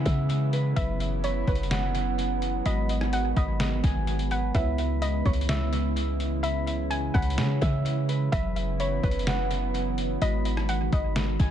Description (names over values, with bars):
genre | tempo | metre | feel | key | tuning
hip hop, atmospheric cloud-rap | 127 BPM | 4/4 | half-time | C# minor | A4 = 440 Hz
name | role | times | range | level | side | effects
soft round pluck | melody | 0.0-11.5 s | B4 to G#5 | -34 LUFS | equal | chorus, tape echo
warbly tape-like pad | sustained chords | 0.0-11.5 s | C#3 to F#4 | -31 LUFS | right 2 dB | chorus, built-in reverb, sidechain pumping
Celtic harp | arpeggios | 0.0-11.5 s | B4 to B5 | -35 LUFS | right 3 dB | tape echo
warm 808-style bass | bass | 0.0-11.5 s | F#1 to C#3 | -28 LUFS | equal | none
marimba with medium hard mallets | texture | 0.0-11.5 s | F#3 to C#5 | -40 LUFS | left 6 dB | none
trip hop sampler-style drum kit | drums | 0.1-11.5 s | hi-hat, kick drum, rim click, snare drum | -30 LUFS | equal | overdrive, tape echo
room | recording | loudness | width
digital ambience | echo-heavy mix, nothing above 10.3 kHz | -24 LUFS | side -10 dB against mid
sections
0.0-11.5 A section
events
none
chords
0.0 C#m7; 0.8 F#7sus4; 2.7 G#m7; 4.5 C#m7; 8.3 F#7sus4; 10.2 G#m7